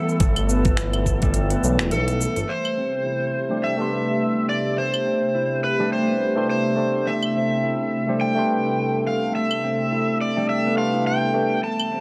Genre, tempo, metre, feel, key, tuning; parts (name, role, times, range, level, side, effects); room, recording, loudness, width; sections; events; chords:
organic downtempo; 105 BPM; 4/4; swing 57% on 16ths; A4 = 445 Hz
overdriven slide guitar; melody; 0.0-12.0 s; A4 to A5; -27 LUFS; equal; tape echo
airy breathy pad; sustained chords; 0.0-12.0 s; C3 to A4; -29 LUFS; equal; chorus, phaser, vintage 12-bit sampler grit, sidechain pumping
concert harp; arpeggios; 0.0-12.0 s; G3 to E4; -31 LUFS; equal; low-pass filter, tape echo
organic electronic drum kit; drums; 0.1-11.9 s; cabasa, claves, finger snaps, hi-hat; -30 LUFS; equal
smooth synth bass; bass; 0.2-2.4 s; D1 to B1; -25 LUFS; equal; tube saturation
electronic kick drum; drums; 0.2-1.3 s; -23 LUFS; equal
barky tine electric piano; accompaniment; 3.5-11.6 s; A3 to C6; -27 LUFS; equal; overdrive, sidechain pumping
light reverb, digital ambience; dry, gritty hardware recording; -22 LUFS; mono
0.0-2.5 A section; 2.5-12.0 B section
filter sweep on harp 2.5-12.0; filter sweep on analog synth pad 2.5-12.0
0.0 G69; 2.5 Cmaj7